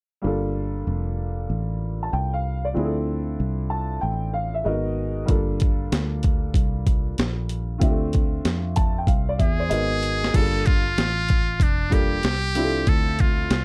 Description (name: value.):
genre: hip hop, jazz-hop.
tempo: 95 BPM.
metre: 4/4.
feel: swing 66% on 16ths.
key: unclear.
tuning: A4 = 440 Hz.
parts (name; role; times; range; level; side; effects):
warm upright piano; accompaniment; 0.2-13.5 s; F3 to A5; -30 LUFS; equal; plate reverb.
fingered electric bass; bass; 0.2-13.6 s; F1 to F2; -29 LUFS; equal; none.
boom bap sampler-style drum kit; drums; 5.3-13.6 s; crash cymbal, hi-hat, kick drum, snare drum; -24 LUFS; equal; none.
trumpet with metal mute; melody; 9.4-13.6 s; D4 to A4; -28 LUFS; equal; plate reverb.
room: little or no reverb.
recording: dark, warm production.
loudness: -23 LUFS.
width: mono.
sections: 0.2-10.3 A section; 10.3-13.6 B section.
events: upright piano fill 3.4-5.3, 8.4-10.3; drum fill 9.7-10.3.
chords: 0.2 Gm9; 2.8 Dm9; 4.7 G#m9; 5.3 Gm9; 7.8 Dm9; 9.7 G#m9; 10.3 Gm9; 12.9 Dm9.